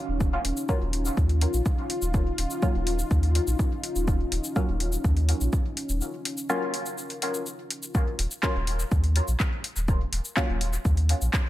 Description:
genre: dub techno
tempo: 124 BPM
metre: 4/4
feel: straight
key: Eb minor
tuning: A4 = 442 Hz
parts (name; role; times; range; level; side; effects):
- dark analog pad; sustained chords; 0.0-7.9 s; Db4 to Gb4; -32 LUFS; left 1 dB; chorus, sidechain pumping
- pure sine sub bass; bass; 0.1-11.3 s; Eb1 to Eb2; -25 LUFS; equal; sidechain pumping
- deep house drum kit; drums; 0.2-11.4 s; handclaps, hi-hat, shaker; -32 LUFS; left 1 dB; overdrive
- electronic kick drum; drums; 0.2-11.4 s; none; -25 LUFS; equal; overdrive
- filtered dub chord stab; stabs; 0.7-10.6 s; Gb3 to F4; -32 LUFS; equal; chorus, phaser, cassette tape, sidechain pumping, dub echo
room: little or no reverb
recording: echo-heavy mix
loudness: -24 LUFS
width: side -15 dB against mid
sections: 0.0-7.9 A section; 7.9-11.5 A section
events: break 6.0-7.9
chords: 0.0 Ebm7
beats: | 0.20 0.69 1.17 1.66 | 2.14 2.62 3.11 3.59 | 4.08 4.56 5.04 5.53 | 6.01 6.50 6.98 7.46 | 7.95 8.43 8.91 9.40 | 9.88 10.37 10.85 11.33

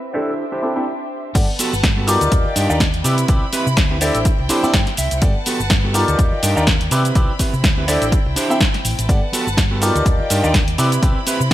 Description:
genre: filtered disco house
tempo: 124 BPM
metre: 4/4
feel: swing 56% on 16ths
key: G major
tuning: A4 = 441 Hz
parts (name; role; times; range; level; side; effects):
- clear studio violin section; sustained chords; 0.0-11.5 s; C4 to B5; -27 LUFS; equal; vintage 12-bit sampler grit, sidechain pumping, low-pass filter
- bright grand piano; accompaniment; 0.1-11.2 s; B3 to E5; -21 LUFS; left 1 dB; phaser, sidechain pumping, low-pass filter
- mellow electric guitar; riff; 0.1-11.5 s; B3 to B5; -24 LUFS; right 2 dB; sidechain pumping, low-pass filter
- hollow-body short-scale fingered electric bass; bass; 1.4-11.5 s; G1 to C3; -21 LUFS; equal; tube saturation, sidechain pumping, low-pass filter
- electronic kick drum; drums; 1.4-11.5 s; none; -17 LUFS; equal; none
- punchy analog drum machine; drums; 1.4-11.5 s; crash cymbal, hi-hat, shaker, snare drum; -21 LUFS; equal; sidechain pumping on hats, sidechain pumping on cymbals, sidechain pumping on perc
room: light reverb, digital ambience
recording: bright 1980s-style digital production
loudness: -15 LUFS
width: side -14 dB against mid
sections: 0.0-1.4 A section; 1.4-11.5 B section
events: drop 1.4-11.5; clean electric guitar fill 4.3-5.2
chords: 0.1 D9sus4; 1.4 Gmaj9; 2.3 Ebmaj7; 3.0 Cmaj7; 4.0 D9sus4; 5.2 Gmaj9; 6.2 Ebmaj7; 6.9 Cmaj7; 7.9 D9sus4; 9.1 Gmaj9; 10.1 Ebmaj7; 10.8 Cmaj7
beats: 0.38 0.87 | 1.35 1.83 2.32 2.80 | 3.29 3.77 4.25 4.74 | 5.22 5.71 6.19 6.67 | 7.16 7.64 8.12 8.61 | 9.09 9.58 10.06 10.54 | 11.03 11.51

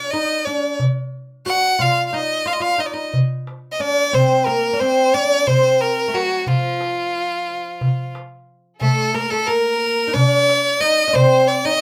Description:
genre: Turkish makam ensemble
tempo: 180 BPM (eighths)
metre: 7/8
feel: straight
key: F makam hicaz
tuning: A4 = 440 Hz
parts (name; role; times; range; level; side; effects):
- bright violin; melody; 0.0-11.8 s; F4 to Gb5+22c; -20 LUFS; equal; none
- oud; second line; 0.0-11.8 s; F3 to Gb4; -25 LUFS; equal; none
- darbuka; percussion; 0.5-11.6 s; none; -22 LUFS; equal; none
- rich studio violin section; second line; 8.8-11.8 s; A4 to Eb5; -29 LUFS; equal; none
room: light reverb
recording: none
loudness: -18 LUFS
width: mono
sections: 0.0-8.8 A section; 8.8-11.8 B section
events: none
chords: none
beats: 0.12 0.46 0.79 1.13 1.46 | 1.79 2.13 2.46 2.80 3.13 3.47 3.80 | 4.14 4.47 4.80 5.14 5.47 5.81 6.14 | 6.48 6.81 7.14 7.48 7.81 8.15 8.48 | 8.82 9.15 9.48 9.82 10.15 10.49 10.82 | 11.15 11.49

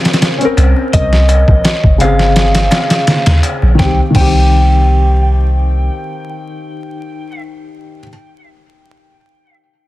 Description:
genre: trip hop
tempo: 84 BPM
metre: 4/4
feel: straight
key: C phrygian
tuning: A4 = 440 Hz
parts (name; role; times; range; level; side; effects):
- felt-muted upright piano; accompaniment; 0.0-8.1 s; Db3 to Bb4; -18 LUFS; left 2 dB; harmonic tremolo, tape echo
- warbly tape-like pad; sustained chords; 0.0-3.8 s; C5; -29 LUFS; right 2 dB; none
- boom bap sampler-style drum kit; drums; 0.1-4.4 s; crash cymbal, hi-hat, kick drum, snare drum; -13 LUFS; equal; none
- darbuka; percussion; 0.1-3.8 s; none; -26 LUFS; left 2 dB; none
- soft 808-style bass; bass; 0.6-5.9 s; G1 to Eb2; -11 LUFS; equal; none
- electric slide guitar; melody; 0.9-7.4 s; Eb5 to G5; -18 LUFS; equal; vintage 12-bit sampler grit, tape echo
room: digital ambience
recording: dense, heavily limited modern master, vinyl crackle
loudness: -9 LUFS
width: side -17 dB against mid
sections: 0.0-3.8 A section; 3.8-6.6 B section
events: none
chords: 0.0 Bbmadd9; 3.8 Cm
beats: 0.22 | 0.93 1.65 2.36 3.07 | 3.79 4.50 5.22 5.93

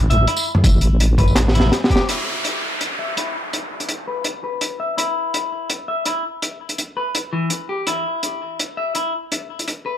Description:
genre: half-time drum and bass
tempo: 166 BPM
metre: 4/4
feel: half-time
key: E minor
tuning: A4 = 440 Hz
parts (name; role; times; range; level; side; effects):
- deep soft wobble bass; bass; 0.0-1.7 s; A1; -16 LUFS; equal; chorus
- clean electric guitar; arpeggios; 0.1-10.0 s; E3 to E5; -24 LUFS; left 2 dB; low-pass filter, ping-pong delay
- crunchy breakbeat drum kit; drums; 0.1-9.8 s; crash cymbal, handclaps, hi-hat, snare drum, tambourine, toms; -20 LUFS; equal; none
- electronic kick drum; drums; 0.6-2.0 s; none; -17 LUFS; equal; overdrive
- downlifter; sound effects; 2.1-5.0 s; none; -27 LUFS; equal; none
room: light reverb, studio reverb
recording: none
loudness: -18 LUFS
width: side -10 dB against mid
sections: 0.0-2.1 A section; 2.1-10.0 B section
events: drop 0.0-2.1; drum fill 1.4-2.1; filter sweep on clean electric guitar 2.1-10.0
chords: 0.0 A5; 2.1 N.C.; 7.9 E5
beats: 0.28 | 0.64 1.00 1.36 1.73 | 2.09 2.45 2.81 3.17 | 3.53 3.89 4.25 4.62 | 4.98 5.34 5.70 6.06 | 6.42 6.79 7.15 7.51 | 7.87 8.23 8.59 8.95 | 9.31 9.68

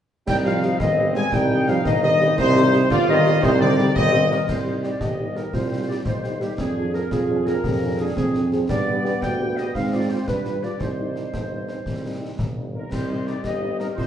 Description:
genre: military-style march for wind band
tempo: 114 BPM (dotted quarters)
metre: 6/8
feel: straight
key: C minor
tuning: A4 = 440 Hz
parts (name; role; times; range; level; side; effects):
- mellow trumpet section; melody; 0.3-14.1 s; G4 to Ab5; -29 LUFS; left 1 dB; none
- mellow euphonium; second line; 0.3-14.1 s; C3 to G4; -26 LUFS; right 1 dB; none
- mellow large flute ensemble; second line; 0.3-4.5, 12.7-14.1 s; Bb4 to Ab5; -27 LUFS; left 5 dB; none
- mellow woodwind section; second line; 0.3-14.1 s; G4 to Ab5; -28 LUFS; equal; none
- bright trombone section; sustained chords; 0.3-4.2, 13.3-13.9 s; G3 to F4; -27 LUFS; right 1 dB; none
- clear tuba; bass; 0.3-14.1 s; G1 to Ab2; -24 LUFS; right 1 dB; none
- concert snare drum, clash cymbals and concert bass drum; drums; 0.3-14.1 s; none; -28 LUFS; left 1 dB; none
- dark French horn section; accompaniment; 0.5-13.9 s; F3 to Ab4; -30 LUFS; left 1 dB; none
room: wet large studio reverb, RT60 1.4 s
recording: heard from further back in the room, nothing above 11.0 kHz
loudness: -19 LUFS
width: side -9 dB against mid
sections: 0.3-4.5 A section; 4.5-12.9 B section; 12.9-14.1 B section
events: none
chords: 0.3 Cm; 6.6 Ddim/F; 8.7 G; 9.8 Fm/Ab; 10.3 G7; 10.8 Cm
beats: | 0.28 0.80 | 1.33 1.85 | 2.38 2.91 | 3.43 3.96 | 4.49 5.01 | 5.54 6.07 | 6.59 7.12 | 7.65 8.17 | 8.70 9.23 | 9.75 10.28 | 10.81 11.33 | 11.86 12.39 | 12.91 13.44 | 13.97

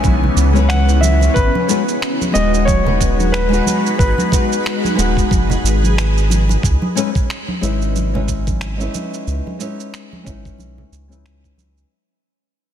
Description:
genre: sunset chillout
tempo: 91 BPM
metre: 4/4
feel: swing 57% on 16ths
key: C# minor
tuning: A4 = 438 Hz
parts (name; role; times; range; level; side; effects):
- warm grand piano; melody; 0.0-5.9 s; B4 to G#5; -22 LUFS; left 1 dB; ping-pong delay
- flamenco guitar; accompaniment; 0.0-11.9 s; G#3 to B4; -21 LUFS; moving between left 8 dB and right 1 dB; auto-pan, low-pass filter, ping-pong delay
- shimmering ambient pad; sustained chords; 0.0-6.6 s; C#3 to B4; -22 LUFS; equal; chorus, built-in reverb, phaser
- round analog bass; bass; 0.0-11.8 s; D#1 to C#2; -16 LUFS; equal; tube saturation
- electronic cabasa and finger snaps; drums; 0.0-11.9 s; none; -26 LUFS; right 5 dB; studio reverb, soft clipping on snare
- electronic kick drum; drums; 0.0-11.6 s; none; -17 LUFS; equal; studio reverb
- congas; percussion; 0.0-11.7 s; none; -25 LUFS; right 2 dB; none
room: light reverb, small room ambience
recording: dense, heavily limited modern master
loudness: -14 LUFS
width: side -9 dB against mid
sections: 0.0-6.6 A section; 6.6-11.9 B section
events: kick drops out 6.0-6.6; fade-out 6.6-11.9; filter sweep on nylon-string guitar 6.6-11.9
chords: 0.0 C#m9; 1.4 G#m7; 6.6 C#m9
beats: 0.04 0.70 | 1.36 2.02 2.68 3.34 | 4.00 4.65 5.31 5.97 | 6.63 7.29 7.95 8.61 | 9.27 9.93 10.59 11.25

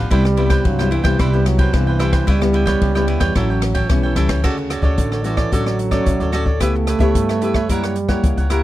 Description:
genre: samba and choro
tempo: 111 BPM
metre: 4/4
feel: straight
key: D major from 4.4 s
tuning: A4 = 444 Hz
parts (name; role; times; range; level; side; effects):
- cavaquinho; accompaniment; 0.0-8.6 s; E4 to G5; -24 LUFS; right 4 dB; none
- nylon-string guitar; accompaniment; 0.0-8.6 s; G2 to G4; -23 LUFS; left 6 dB; none
- upright bass; bass; 0.0-8.6 s; A1 to G2; -19 LUFS; equal; none
- mellow trombone; second line; 0.1-8.5 s; C#3 to A3; -22 LUFS; right 5 dB; none
- open jazz drum kit; drums; 0.1-8.6 s; crash cymbal, hi-hat, kick drum, ride cymbal, rim click; -21 LUFS; equal; none
room: little or no reverb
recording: dry, close 1970s-style studio recording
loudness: -15 LUFS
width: side -15 dB against mid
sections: 0.0-4.4 A section; 4.4-8.6 B section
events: none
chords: 0.1 Cmaj7; 2.3 C#m7b5; 3.4 A7; 4.4 Dmaj7; 6.6 C#m7b5; 7.7 F#7b9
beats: | 0.11 0.65 1.20 1.74 | 2.28 2.82 3.36 3.90 | 4.44 4.98 5.53 6.07 | 6.61 7.15 7.69 8.24

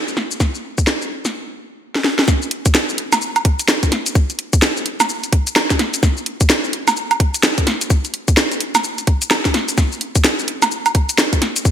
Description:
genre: UK garage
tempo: 128 BPM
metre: 4/4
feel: swing 62% on 16ths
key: none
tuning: none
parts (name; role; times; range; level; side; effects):
- garage drum kit; drums; 0.1-11.7 s; hi-hat, shaker, snare drum, woodblock; -16 LUFS; right 1 dB; overdrive, gated reverb
- electronic kick drum; drums; 0.4-11.7 s; none; -15 LUFS; equal; overdrive
room: moderate lush hall reverb, RT60 1.9 s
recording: bright 1980s-style digital production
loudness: -15 LUFS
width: side -9 dB against mid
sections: 0.0-2.3 A section; 2.3-11.7 B section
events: drum fill 1.9-2.3; drop 2.3-11.7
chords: none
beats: | 0.40 0.87 1.34 1.81 | 2.28 2.75 3.22 3.69 | 4.15 4.62 5.09 5.56 | 6.03 6.50 6.97 7.43 | 7.90 8.37 8.84 9.31 | 9.78 10.25 10.72 11.19 | 11.65

